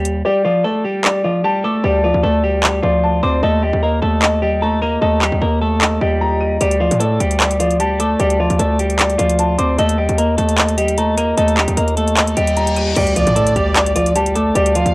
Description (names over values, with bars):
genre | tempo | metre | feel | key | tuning
hip hop, trap | 151 BPM | 4/4 | half-time | D phrygian | A4 = 440 Hz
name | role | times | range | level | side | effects
clean electric guitar | melody | 0.0-14.9 s | F3 to C5 | -18 LUFS | equal | low-pass filter
distorted 808-style bass | bass | 0.0-14.9 s | D2 to A2 | -19 LUFS | equal | distortion
trap drum kit | drums | 0.1-14.9 s | crash cymbal, handclaps, hi-hat | -18 LUFS | equal | cassette tape
dark grand piano | accompaniment | 0.2-14.9 s | D5 to Eb7 | -18 LUFS | left 1 dB | low-pass filter, cassette tape
reverse cymbal and impact | sound effects | 12.3-14.6 s | none | -26 LUFS | equal | none
warm studio violin section | second line | 13.2-14.9 s | D5 to F5 | -21 LUFS | right 2 dB | cassette tape
room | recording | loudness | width
light reverb | home recording on cassette | -13 LUFS | side -23 dB against mid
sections
0.0-13.0 A section; 13.0-14.9 B section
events
hi-hats muted 0.2-6.6; kick muted 0.2-1.0; reverse cymbal 12.3-13.0; impact 13.0-14.6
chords
0.2 Dm; 3.4 Eb; 6.6 Dm; 9.8 Eb; 13.0 Dm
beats
| 0.25 0.65 1.04 1.44 | 1.84 2.24 2.63 3.03 | 3.43 3.83 4.22 4.62 | 5.02 5.42 5.81 6.21 | 6.61 7.00 7.40 7.80 | 8.20 8.59 8.99 9.39 | 9.79 10.18 10.58 10.98 | 11.38 11.77 12.17 12.57 | 12.96 13.36 13.76 14.16 | 14.55